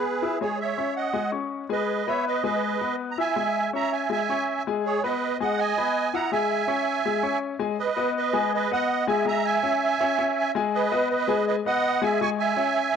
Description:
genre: latin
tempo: 163 BPM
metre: 4/4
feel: straight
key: G# minor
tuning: A4 = 442 Hz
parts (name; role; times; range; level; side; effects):
- musette accordion; melody; 0.0-13.0 s; G#4 to C#6; -25 LUFS; right 7 dB; cassette tape
- clear upright piano; accompaniment; 0.0-12.9 s; G#3 to E6; -26 LUFS; left 8 dB; none
room: moderate spring reverb, RT60 1.9 s, small room reverb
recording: home recording on cassette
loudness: -22 LUFS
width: side -7 dB against mid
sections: 0.0-7.8 A section; 7.8-13.0 B section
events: none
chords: 0.4 C#m; 1.9 G#m; 3.4 C#m; 4.8 G#m; 6.3 C#m; 7.8 G#m; 9.3 C#m; 10.7 G#m; 12.2 C#m

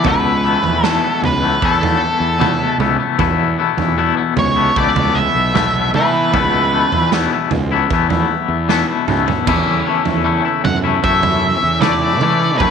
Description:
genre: psychedelic rock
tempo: 76 BPM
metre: 4/4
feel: straight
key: unclear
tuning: A4 = 440 Hz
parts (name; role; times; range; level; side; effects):
- octave-fuzz lead guitar; melody; 0.0-12.7 s; A4 to F#5; -18 LUFS; right 3 dB; distortion, slapback echo
- twangy electric guitar; riff; 0.0-12.7 s; E2 to E4; -17 LUFS; left 13 dB; tremolo
- fuzz fingered electric bass; bass; 0.0-12.7 s; B1 to E3; -20 LUFS; right 2 dB; overdrive
- raw garage drum kit; drums; 0.0-12.7 s; crash cymbal, kick drum, snare drum, toms; -20 LUFS; right 7 dB; none
- combo organ; sustained chords; 9.5-12.7 s; C#3 to E5; -26 LUFS; right 13 dB; none
room: light reverb, studio reverb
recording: 1960s-style stereo with parts hard left and right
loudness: -13 LUFS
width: side -6 dB against mid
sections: 0.0-12.7 A section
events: drum fill 8.7-9.5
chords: 0.0 Esus4; 9.5 A/E

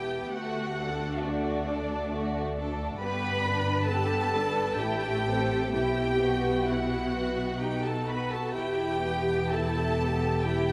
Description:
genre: classical, slow romantic movement for string orchestra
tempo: 62-68 BPM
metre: 3/4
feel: rubato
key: E minor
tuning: A4 = 440 Hz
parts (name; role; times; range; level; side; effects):
- rich studio violin section; melody; 0.0-10.7 s; D5 to B5; -36 LUFS; equal; none
- warm studio violin section; second line; 0.0-10.7 s; A3 to B4; -35 LUFS; equal; none
- rich chamber viola section; accompaniment; 0.0-10.7 s; D4 to B4; -34 LUFS; equal; none
- dark chamber double bass section; bass; 0.0-10.7 s; E1 to D2; -37 LUFS; equal; none
- rich studio cello section; bass; 0.0-10.7 s; D2 to B2; -37 LUFS; equal; none
room: wet cathedral reverb, RT60 5.2 s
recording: in a vast, echoing space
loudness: -29 LUFS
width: mono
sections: 0.0-10.7 A section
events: none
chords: 0.4 D; 3.0 G; 4.8 Am; 5.7 Bsus4; 7.6 B; 8.6 Em

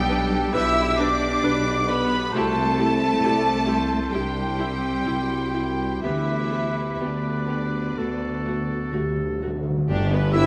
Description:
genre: classical, slow romantic movement for symphony orchestra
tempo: 62-69 BPM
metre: 4/4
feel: rubato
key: G major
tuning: A4 = 440 Hz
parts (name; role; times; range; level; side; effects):
- rich symphonic violin section; melody; 0.0-10.5 s; D5 to E6; -33 LUFS; equal; none
- clear oboe; second line; 0.0-10.5 s; G4 to E5; -35 LUFS; equal; none
- mellow clarinet; second line; 0.0-10.5 s; C4 to G4; -34 LUFS; equal; none
- mellow concert flute; second line; 0.0-10.5 s; D5 to E6; -31 LUFS; equal; none
- warm symphonic violin section; second line; 0.0-10.5 s; D4 to E5; -34 LUFS; equal; none
- dark French horn section; sustained chords; 0.0-10.5 s; B3 to G4; -32 LUFS; equal; none
- rich symphonic cello section; bass; 0.0-10.5 s; G2 to E4; -32 LUFS; equal; none
- rich symphonic double bass section; bass; 0.0-10.5 s; G1 to D2; -33 LUFS; equal; none
- warm tuba; bass; 0.0-10.5 s; G1 to D2; -32 LUFS; equal; none
- rich chamber viola section; accompaniment; 0.1-10.5 s; A3 to B4; -34 LUFS; equal; none
- timpani; percussion; 8.0-10.5 s; G2 to D3; -31 LUFS; equal; none
- warm trombone section; sustained chords; 9.9-10.5 s; G3 to D4; -33 LUFS; equal; none
- warm trumpet; stabs; 10.3-10.5 s; E4; -29 LUFS; equal; none
room: wet scoring stage reverb, RT60 1.6 s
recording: none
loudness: -23 LUFS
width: mono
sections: 0.0-9.9 A section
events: timpani fill 8.0-9.9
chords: 0.0 G/B; 2.3 C; 6.0 G/D; 8.0 D; 9.9 G

